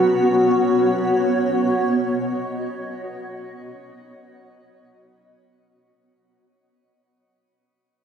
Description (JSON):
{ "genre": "ambient", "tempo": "free time", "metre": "none", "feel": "none", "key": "unclear", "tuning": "A4 = 440 Hz", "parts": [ { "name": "granular cloud pad", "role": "sustained chords", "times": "0.0-6.0 s", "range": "B3 to F#5", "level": "-18 LUFS", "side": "equal", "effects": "built-in reverb, ensemble chorus, shimmer reverb" }, { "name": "organ-like drone", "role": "drone", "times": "0.0-6.1 s", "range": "F#3 to C#4", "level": "-33 LUFS", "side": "right 2 dB", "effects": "ensemble chorus, built-in reverb" } ], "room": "wet plate reverb, RT60 2.8 s", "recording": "dreamy mix soaked in reverb, cassette tape", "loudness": "-18 LUFS", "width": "side -8 dB against mid", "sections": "0.0-6.0 A section", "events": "fade-out 0.0-6.0", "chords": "0.0 Badd9", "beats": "free time" }